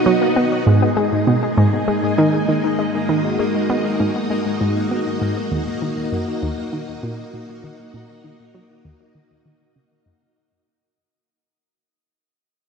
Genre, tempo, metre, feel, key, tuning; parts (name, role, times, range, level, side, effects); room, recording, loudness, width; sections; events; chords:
ambient, sequencer-driven space music; 99 BPM; 4/4; straight; A4 = 440 Hz
string machine, full ensemble; sustained chords; 0.0-10.3 s; G#3 to D#5; -21 LUFS; equal; ensemble chorus, shimmer reverb
analog pluck; riff; 0.1-10.1 s; D#2 to B3; -20 LUFS; equal; chorus, ping-pong delay
pulsing gated texture; texture; 1.3-10.4 s; A#3 to A#4; -29 LUFS; left 2 dB; chorus, built-in reverb
moderate plate reverb, RT60 2.3 s; dark, warm production; -17 LUFS; side -6 dB against mid
0.7-10.4 A section
fade-out 0.7-10.4; filter sweep on synth arpeggio sound 0.7-10.4
0.0 B; 0.7 G#m; 5.5 D#m